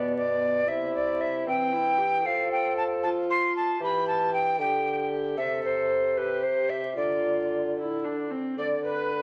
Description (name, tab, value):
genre	classical, renaissance-style consort dance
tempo	76 BPM (dotted quarters)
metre	6/8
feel	straight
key	unclear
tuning	A4 = 441 Hz
part	alto recorder	melody	0.0-9.2 s	B4 to C6	-28 LUFS	equal	none
part	warm viola	second line	0.0-9.2 s	B3 to D5	-35 LUFS	equal	none
part	warm bassoon	bass	0.0-9.2 s	B2 to F3	-33 LUFS	equal	none
room	wet large studio reverb, RT60 1.5 s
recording	vinyl crackle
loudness	-27 LUFS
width	mono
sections	0.0-8.6 A section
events	none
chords	0.0 G (rootless); 0.7 C; 2.2 F; 3.8 Em; 5.4 C5; 7.0 Dm